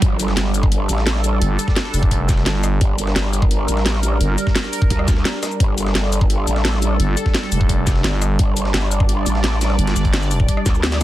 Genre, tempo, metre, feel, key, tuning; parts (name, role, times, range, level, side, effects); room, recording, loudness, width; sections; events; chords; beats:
dark technical drum and bass; 172 BPM; 4/4; straight; G minor; A4 = 439 Hz
sweeping resonant pad; sustained chords; 0.0-11.0 s; G3 to D5; -24 LUFS; right 2 dB; chorus, sidechain pumping
growl bass; bass; 0.0-11.0 s; G1 to D2; -20 LUFS; equal; chorus, tube saturation
breakbeat sampler-style drum kit; drums; 0.0-11.0 s; hi-hat, snare drum; -32 LUFS; left 1 dB
drum and bass drum kit; drums; 0.0-11.0 s; cabasa, hi-hat, rim click, snare drum, toms; -23 LUFS; equal
electronic kick drum; drums; 0.0-10.7 s; -17 LUFS; equal
growling FM bass; bass; 1.4-4.4, 7.0-10.5 s; F1 to G1; -19 LUFS; equal
little or no reverb; dense, heavily limited modern master; -15 LUFS; side -14 dB against mid
0.0-11.0 A section
drop 0.0-11.0; drum fill 10.8
0.0 G5
| 0.02 0.37 0.72 1.07 | 1.42 1.76 2.11 2.46 | 2.81 3.16 3.51 3.86 | 4.21 4.55 4.90 5.25 | 5.60 5.95 6.30 6.65 | 7.00 7.35 7.70 8.04 | 8.39 8.74 9.09 9.44 | 9.79 10.14 10.48 10.83